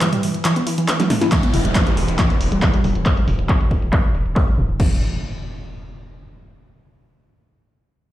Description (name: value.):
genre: driving peak-time techno.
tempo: 138 BPM.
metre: 4/4.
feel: straight.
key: E minor.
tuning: A4 = 440 Hz.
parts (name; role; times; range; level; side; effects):
warbly dusty pluck; riff; 0.0-5.0 s; E3 to E4; -22 LUFS; equal; chorus, sidechain pumping, ping-pong delay.
swarming drone; drone; 0.0-1.4 s; E3; -29 LUFS; right 3 dB; built-in reverb, sidechain pumping.
punchy analog drum machine; drums; 0.0-4.9 s; crash cymbal, handclaps, hi-hat, snare drum, toms; -23 LUFS; equal; low-pass filter on hats, low-pass filter on snare, low-pass filter on toms, low-pass filter on cymbals, low-pass filter on room.
electronic kick drum; drums; 1.3-4.9 s; none; -17 LUFS; equal; none.
downlifter and impact; sound effects; 1.3-6.5 s; none; -26 LUFS; equal; none.
saturated sub bass; bass; 1.5-5.0 s; E1; -22 LUFS; equal; tube saturation, sidechain pumping, low-pass filter.
room: light reverb.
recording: played on a big sound system in a bare room, stone room reverb.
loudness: -16 LUFS.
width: side -14 dB against mid.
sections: 0.0-1.3 A section; 1.3-4.8 B section; 4.8-6.5 C section.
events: break 0.0-1.3; drop 0.0-1.3; drum fill 0.9-1.3; filter sweep on drum 1.3-4.8.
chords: none.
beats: 0.01 0.45 0.88 | 1.32 1.75 2.19 2.62 | 3.06 3.49 3.93 4.36 | 4.80 5.23 5.67 6.10.